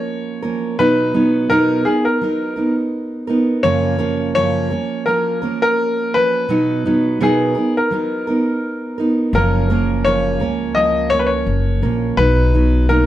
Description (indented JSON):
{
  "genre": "pop",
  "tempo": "84 BPM",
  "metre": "4/4",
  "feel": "swing 55% on 16ths",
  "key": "F# major",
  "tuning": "A4 = 440 Hz",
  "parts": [
    { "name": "clear upright piano", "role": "melody", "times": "0.0-13.1 s", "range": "G#4 to D#5", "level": "-19 LUFS", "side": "left 2 dB", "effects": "plate reverb" },
    { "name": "fingerpicked steel-string acoustic guitar", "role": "accompaniment", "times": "0.0-13.1 s", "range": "F#2 to A#4", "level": "-18 LUFS", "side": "right 2 dB", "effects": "none" },
    { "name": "upright bass", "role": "bass", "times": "9.3-13.1 s", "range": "F#1 to C#2", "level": "-18 LUFS", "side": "left 1 dB", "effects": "none" }
  ],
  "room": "light reverb",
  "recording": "none",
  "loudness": "-15 LUFS",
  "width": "side -13 dB against mid",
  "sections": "0.0-13.1 A section",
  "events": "none",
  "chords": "0.0 F#maj7 (rootless); 0.8 Bmaj7; 3.6 F#maj7; 6.5 Bmaj7; 9.3 F#maj7; 12.2 Bmaj7",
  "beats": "0.06 | 0.78 1.49 2.20 2.92 | 3.63 4.34 5.06 5.77 | 6.48 7.20 7.91 8.62 | 9.34 10.05 10.76 11.47 | 12.19 12.90"
}